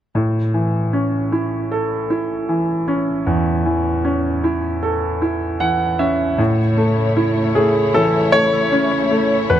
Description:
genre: pop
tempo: 77 BPM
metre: 4/4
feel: straight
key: A major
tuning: A4 = 442 Hz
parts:
  - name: clear concert grand piano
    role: accompaniment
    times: 0.1-9.6 s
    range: E2 to F#5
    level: -17 LUFS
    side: equal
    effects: none
  - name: dark studio string section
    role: sustained chords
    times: 6.4-9.6 s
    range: C#3 to C#5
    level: -21 LUFS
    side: left 1 dB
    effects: none
  - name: clear concert grand piano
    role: melody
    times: 7.6-9.6 s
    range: G#4 to C#5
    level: -16 LUFS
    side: left 1 dB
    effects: ping-pong delay
room: light reverb, small room reverb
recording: lossy compression artefacts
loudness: -16 LUFS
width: side -10 dB against mid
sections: 0.2-6.4 A section; 6.4-9.6 B section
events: grand piano fill 5.2-6.4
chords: 0.2 A

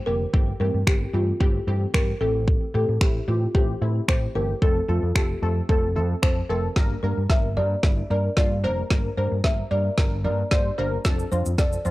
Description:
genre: dance-pop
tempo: 112 BPM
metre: 4/4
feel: straight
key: G dorian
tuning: A4 = 440 Hz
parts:
  - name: folk marimba with soft mallets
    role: melody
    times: 0.0-11.9 s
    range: F4 to E5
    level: -28 LUFS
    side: equal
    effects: none
  - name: funky polysynth comp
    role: accompaniment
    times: 0.1-11.9 s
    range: D3 to C5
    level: -30 LUFS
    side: equal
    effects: chorus, sidechain pumping
  - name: fingered electric bass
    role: bass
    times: 0.1-11.9 s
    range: F1 to A2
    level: -25 LUFS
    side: equal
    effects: sidechain pumping
  - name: deep house drum kit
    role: drums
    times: 0.3-11.9 s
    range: finger snaps, kick drum, shaker, snare drum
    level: -21 LUFS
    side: equal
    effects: none
room: little or no reverb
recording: dry, gritty hardware recording, cassette tape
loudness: -20 LUFS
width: side -18 dB against mid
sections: 0.0-6.8 A section; 6.8-11.9 B section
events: build-up 6.8-11.9; drum fill 6.8-11.9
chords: 0.3 C6/G; 4.6 F; 6.8 Gm; 11.0 F6

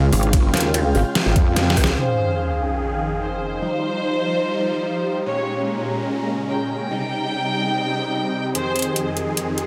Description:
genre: heavy wobble dubstep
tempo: 146 BPM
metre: 4/4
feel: half-time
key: F minor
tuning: A4 = 439 Hz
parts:
  - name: supersaw chords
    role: sustained chords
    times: 0.0-9.7 s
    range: F2 to Ab4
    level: -28 LUFS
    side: equal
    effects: sidechain pumping, low-pass filter
  - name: wobble bass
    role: bass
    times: 0.0-1.8 s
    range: Ab1 to F2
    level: -20 LUFS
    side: equal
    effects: chorus, overdrive
  - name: granular cloud pad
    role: texture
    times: 0.0-9.7 s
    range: C4 to C6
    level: -29 LUFS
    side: equal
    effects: built-in reverb, sidechain pumping
  - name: pulsing pluck wobble bass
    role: bass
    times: 0.1-2.0 s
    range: Ab1 to Eb2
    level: -22 LUFS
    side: equal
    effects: chorus, overdrive
  - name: dubstep drum kit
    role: drums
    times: 0.1-2.0, 8.6-9.7 s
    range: hi-hat, ride cymbal, snare drum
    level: -25 LUFS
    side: equal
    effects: high-pass filter on hats, high-pass filter on cymbals, high-pass filter on snare, high-pass filter on room
  - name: electronic kick drum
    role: drums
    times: 0.3-1.9 s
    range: none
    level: -20 LUFS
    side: equal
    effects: overdrive
  - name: clear studio violin section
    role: melody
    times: 2.0-9.1 s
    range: C5 to G5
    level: -27 LUFS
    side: equal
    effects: vintage 12-bit sampler grit, digital delay
  - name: sub drop and riser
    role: sound effects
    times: 2.0-3.6, 9.4-9.7 s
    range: none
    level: -30 LUFS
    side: equal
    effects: none
room: light reverb, digital ambience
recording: none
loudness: -21 LUFS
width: mono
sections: 0.0-2.0 A section; 2.0-8.6 B section; 8.6-9.7 C section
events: drop 0.0-2.0; drum fill 1.6-2.0; impact 2.0-3.6; build-up 8.6-9.7; filter sweep 8.6-9.7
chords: 0.0 Db; 2.0 Fm7; 3.6 Ebadd9; 5.3 Bbm7; 6.9 Cm; 8.6 Fm7

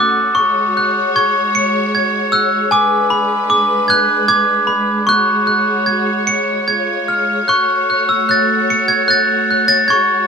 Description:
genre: children's music, lullaby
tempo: 76 BPM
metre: 3/4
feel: rubato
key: F# minor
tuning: A4 = 441 Hz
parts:
  - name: glockenspiel with hard plastic mallets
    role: melody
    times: 0.0-10.3 s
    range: G#5 to C#7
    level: -13 LUFS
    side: equal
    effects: none
  - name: rich symphonic string section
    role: sustained chords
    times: 0.0-10.3 s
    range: G#3 to C#5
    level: -20 LUFS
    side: left 2 dB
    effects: none
room: moderate studio reverb, RT60 0.6 s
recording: none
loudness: -12 LUFS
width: side -6 dB against mid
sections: 0.0-10.3 A section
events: none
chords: 0.4 C#sus4; 2.7 G#dim; 5.1 C#sus4; 6.7 C#; 7.5 F#m

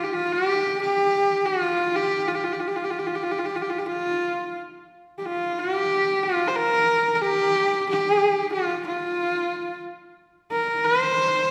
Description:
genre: mongolian traditional, Mongolian folk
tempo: 91 BPM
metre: 4/4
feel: straight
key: unclear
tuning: A4 = 440 Hz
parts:
  - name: bright horsehead fiddle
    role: solo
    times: 0.0-11.5 s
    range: F4 to C5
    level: -24 LUFS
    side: equal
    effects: none
room: wet scoring stage reverb, RT60 1.6 s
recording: recorded in a church or concert hall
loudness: -24 LUFS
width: mono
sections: 0.0-4.9 A section; 4.9-11.5 B section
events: none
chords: none

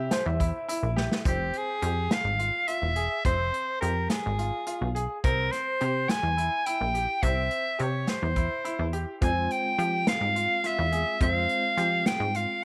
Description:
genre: progressive instrumental, band music in an uneven meter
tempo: 211 BPM (eighths)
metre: 7/8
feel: straight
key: F harmonic minor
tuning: A4 = 440 Hz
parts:
  - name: clear trombone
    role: second line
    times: 0.0-1.0 s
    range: none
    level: barely audible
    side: none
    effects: none
  - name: overdriven tine electric piano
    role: accompaniment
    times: 0.0-1.2, 9.2-12.6 s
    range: Ab3 to E5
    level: -37 LUFS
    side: equal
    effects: medium tremolo
  - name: bright grand piano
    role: arpeggios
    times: 0.0-12.5 s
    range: C4 to Ab4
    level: -38 LUFS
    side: equal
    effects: none
  - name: plucky analog bass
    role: bass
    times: 0.0-12.5 s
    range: E1 to F3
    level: -31 LUFS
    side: equal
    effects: none
  - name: unplugged drum kit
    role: drums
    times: 0.1-12.5 s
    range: hi-hat, kick drum, snare drum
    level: -32 LUFS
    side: equal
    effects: none
  - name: clear soprano saxophone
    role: melody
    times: 1.3-12.6 s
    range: G4 to Ab5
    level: -30 LUFS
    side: equal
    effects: none
room: light reverb, studio reverb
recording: none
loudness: -27 LUFS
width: mono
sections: 0.0-1.3 A section; 1.3-12.6 B section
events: tine electric piano solo 0.0-1.3; drum fill 1.0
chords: 0.0 C; 1.3 Fm; 5.2 C; 9.2 Fm

